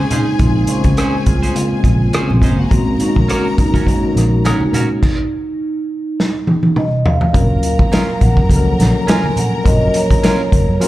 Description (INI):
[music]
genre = lush 1970s-style soul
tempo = 104 BPM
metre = 4/4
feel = swing 54% on 16ths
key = unclear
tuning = A4 = 439 Hz
[part]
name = vibraphone with soft mallets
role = melody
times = 0.0-10.8 s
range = Bb3 to Ab5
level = -21 LUFS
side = right 2 dB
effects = slapback echo
[part]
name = rich studio string section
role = second line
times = 0.0-10.9 s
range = Eb4 to Bb5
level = -26 LUFS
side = left 2 dB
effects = none
[part]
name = tine electric piano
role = accompaniment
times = 0.0-10.9 s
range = C3 to C5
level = -18 LUFS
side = left 2 dB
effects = medium stereo tremolo
[part]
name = semi-hollow electric guitar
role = riff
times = 0.1-10.4 s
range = Db4 to C5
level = -24 LUFS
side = right 3 dB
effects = slapback echo
[part]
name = vintage drum kit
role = drums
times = 0.1-10.9 s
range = crash cymbal, hi-hat, kick drum, rim click, snare drum, toms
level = -15 LUFS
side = equal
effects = none
[part]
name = congas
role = percussion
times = 0.1-10.9 s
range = none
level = -24 LUFS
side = right 2 dB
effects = none
[part]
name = vintage muted fingered electric bass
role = bass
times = 0.4-10.8 s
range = Gb1 to Gb2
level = -16 LUFS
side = equal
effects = none
[sound]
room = small room reverb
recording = live gig heard through the venue's PA, club reverb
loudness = -12 LUFS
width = side -16 dB against mid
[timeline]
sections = 0.0-7.3 A section; 7.3-10.9 B section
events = stop 5.0-7.3; drum fill 6.2-7.3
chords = 0.0 Bbm9; 2.7 Ab9sus4; 7.3 Gbmaj7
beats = | 0.40 0.97 1.55 2.13 | 2.71 3.29 3.87 4.45 | 5.03 5.61 6.18 6.76 | 7.34 7.92 8.50 9.08 | 9.65 10.23 10.81